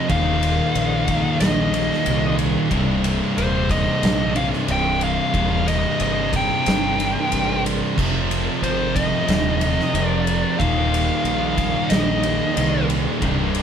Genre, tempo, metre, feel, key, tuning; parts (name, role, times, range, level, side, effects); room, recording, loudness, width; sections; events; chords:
stoner and doom metal; 91 BPM; 4/4; straight; A4 = 440 Hz
fuzz lead guitar; melody; 0.0-12.8 s; C5 to G5; -23 LUFS; left 1 dB; distortion
heavy high-gain guitar; riff; 0.0-13.6 s; C2 to F3; -26 LUFS; right 1 dB; distortion
thick fuzz guitar; riff; 0.0-13.6 s; C2 to F3; -26 LUFS; left 7 dB; distortion
thick fuzz guitar; riff; 0.0-13.6 s; C2 to F3; -25 LUFS; right 6 dB; distortion
fingered electric bass; bass; 0.1-13.6 s; C1 to C2; -25 LUFS; equal; overdrive
oversized low-tuned drum kit; drums; 0.1-13.6 s; crash cymbal, kick drum, ride cymbal, snare drum; -25 LUFS; equal
moderate studio reverb, RT60 0.7 s; band playing live in one room; -18 LUFS; side -8 dB against mid
0.0-13.6 A section
0.1 Eb5; 2.7 Cm; 8.0 Fm; 10.6 Eb5